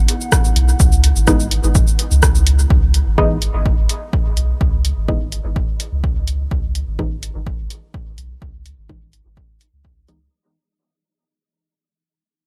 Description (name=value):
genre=dub techno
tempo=126 BPM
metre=4/4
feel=straight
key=C# minor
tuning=A4 = 440 Hz
part: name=warbly tape-like pad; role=sustained chords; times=0.0-2.7 s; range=B3 to F#5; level=-34 LUFS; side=equal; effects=chorus, built-in reverb, sidechain pumping
part: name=soft dub sub bass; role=bass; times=0.0-10.3 s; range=G#1 to C#2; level=-19 LUFS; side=equal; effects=sidechain pumping
part: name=punchy analog drum machine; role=drums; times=0.1-10.2 s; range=cabasa, hi-hat, rim click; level=-23 LUFS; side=equal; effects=none
part: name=electronic kick drum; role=drums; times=0.3-9.9 s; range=none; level=-20 LUFS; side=equal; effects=none
part: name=filtered dub chord stab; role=stabs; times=1.3-10.2 s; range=E3 to D#4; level=-25 LUFS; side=equal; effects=chorus, phaser, sidechain pumping, dub echo
room=little or no reverb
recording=lossy compression artefacts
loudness=-16 LUFS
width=mono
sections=0.0-2.7 A section; 2.7-10.3 B section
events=filter sweep on synth stab 0.0-2.7, 2.7-10.3; fade-out 2.7-10.3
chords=0.0 C#m9; 2.7 C#7(no3)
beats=0.32 | 0.80 1.27 1.75 2.23 | 2.70 3.18 3.66 4.13 | 4.61 5.08 5.56 6.04 | 6.51 6.99 7.46 7.94 | 8.42 8.89 9.37 9.85